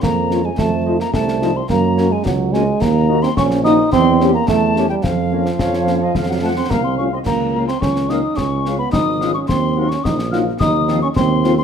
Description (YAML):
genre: military-style march for wind band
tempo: 108 BPM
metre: 2/4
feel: straight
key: Bb minor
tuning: A4 = 439 Hz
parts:
  - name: clear euphonium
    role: second line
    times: 0.0-11.6 s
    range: F3 to F4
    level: -18 LUFS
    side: right 4 dB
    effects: none
  - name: mellow hollow piccolo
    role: second line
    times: 0.0-11.6 s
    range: F5 to F6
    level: -23 LUFS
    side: left 6 dB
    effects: none
  - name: warm tuba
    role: bass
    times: 0.0-11.6 s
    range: Ab1 to Gb2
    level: -20 LUFS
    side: right 3 dB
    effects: none
  - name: concert snare drum, concert bass drum and clash cymbals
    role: drums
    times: 0.0-11.6 s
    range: none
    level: -24 LUFS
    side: left 2 dB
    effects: none
  - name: dark trumpet section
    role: melody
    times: 0.3-11.5 s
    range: none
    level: barely audible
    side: none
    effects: none
  - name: mellow woodwind section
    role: second line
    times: 0.3-11.5 s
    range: F4 to Gb5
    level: -30 LUFS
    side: left 3 dB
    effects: none
  - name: mellow French horn section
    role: accompaniment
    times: 0.3-11.5 s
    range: F3 to G4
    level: -22 LUFS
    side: left 8 dB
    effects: none
room: moderate large studio reverb, RT60 1.3 s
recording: none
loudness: -14 LUFS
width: side -7 dB against mid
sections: 0.0-11.6 A section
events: none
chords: 0.0 Bbm; 0.6 F5; 1.7 Gb; 2.8 Ebm; 3.9 Edim7; 5.0 Bbm/F; 6.2 F; 7.3 Bbm/Db; 8.4 Db7; 9.5 Ebm; 10.6 F7/Eb